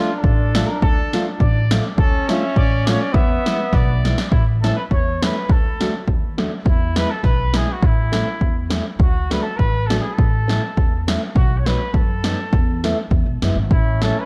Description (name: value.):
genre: alpine folk, alpine dance band.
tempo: 102 BPM.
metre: 2/4.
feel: swing 53% on 8ths.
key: D harmonic minor, A major from 4.3 s.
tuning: A4 = 440 Hz.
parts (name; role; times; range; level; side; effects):
clear trumpet; melody; 0.0-14.3 s; E4 to E5; -28 LUFS; equal; delay.
mellow trumpet; second line; 0.0-4.0, 13.7-14.3 s; B3 to D4; -29 LUFS; equal; delay.
fingerpicked old ladder-braced acoustic guitar; accompaniment; 0.0-14.2 s; F#3 to F#4; -29 LUFS; equal; none.
upright bass; bass; 0.2-14.1 s; E1 to F#2; -24 LUFS; equal; none.
punchy analog drum machine; drums; 0.2-14.1 s; kick drum, snare drum; -21 LUFS; equal; none.
room: light reverb.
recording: worn, warbling old tape, cassette tape, warbly pitch drift.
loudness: -18 LUFS.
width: mono.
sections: 0.0-4.3 A section; 4.3-14.3 B section.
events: drum fill 4.0.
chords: 0.0 Dm; 3.1 E7; 4.3 A; 5.5 D; 6.7 E; 7.8 A; 9.0 D; 10.2 A; 11.4 B7; 12.5 Esus4; 13.1 E; 13.7 A.